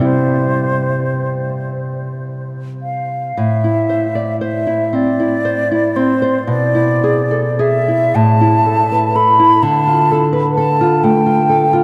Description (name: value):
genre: romantic duo for flute and classical guitar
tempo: 34-43 BPM (dotted quarters)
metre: 6/8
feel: rubato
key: C major, A minor from 3.4 s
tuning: A4 = 440 Hz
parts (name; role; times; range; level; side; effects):
- mellow silver concert flute; melody; 0.0-11.8 s; C5 to B5; -18 LUFS; equal; none
- nylon-string guitar; accompaniment; 0.0-11.8 s; A2 to D5; -18 LUFS; equal; none
room: wet cathedral reverb, RT60 6.5 s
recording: in a vast, echoing space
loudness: -15 LUFS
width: mono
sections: 0.0-3.4 A section; 3.4-11.8 B section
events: none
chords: 0.0 C; 3.4 Am; 6.5 E7/B; 8.2 A5; 9.6 Dm